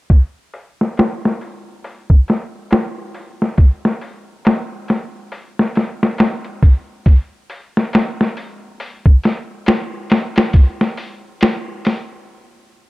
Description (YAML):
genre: trip hop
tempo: 69 BPM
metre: 4/4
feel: swing 59% on 16ths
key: none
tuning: none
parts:
  - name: boom bap sampler-style drum kit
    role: drums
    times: 0.1-12.1 s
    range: hi-hat, kick drum, snare drum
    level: -13 LUFS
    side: equal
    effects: low-pass filter on hats, low-pass filter on kick, low-pass filter on snare
room: light reverb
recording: none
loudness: -14 LUFS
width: side -20 dB against mid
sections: 0.1-12.9 A section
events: stop 12.3-12.9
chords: none